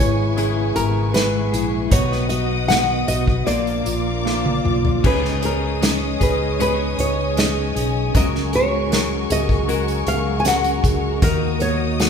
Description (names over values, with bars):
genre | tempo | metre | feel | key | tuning
pop ballad | 78 BPM | 4/4 | straight | unclear | A4 = 440 Hz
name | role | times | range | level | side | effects
nylon-string guitar | melody | 0.0-12.1 s | Bb4 to Ab5 | -23 LUFS | equal | none
mellow tine electric piano | accompaniment | 0.0-12.1 s | Eb3 to Bb4 | -25 LUFS | right 2 dB | medium stereo tremolo
warm studio string section | sustained chords | 0.0-12.1 s | B3 to D#6 | -28 LUFS | left 2 dB | none
direct-recorded clean electric guitar | arpeggios | 0.0-12.1 s | G#2 to Bb4 | -26 LUFS | left 6 dB | none
mellow fretless electric bass | bass | 0.0-12.1 s | G#1 to Eb2 | -24 LUFS | equal | none
unplugged drum kit | drums | 0.4-12.1 s | crash cymbal, hi-hat, kick drum, snare drum, toms | -21 LUFS | equal | none
room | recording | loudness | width
moderate recital hall reverb, RT60 1.4 s | recorded in a church or concert hall | -17 LUFS | side -6 dB against mid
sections
0.0-12.1 A section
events
drum fill 4.3-5.0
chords
0.0 E6/G#; 1.9 B; 3.5 Bb; 5.0 Dbsus2; 8.1 Gbadd9/Db; 11.2 Ebm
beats
0.38 1.15 | 1.92 2.69 3.47 4.26 | 5.04 5.82 6.60 7.37 | 8.15 8.92 9.69 10.45 | 11.22 12.00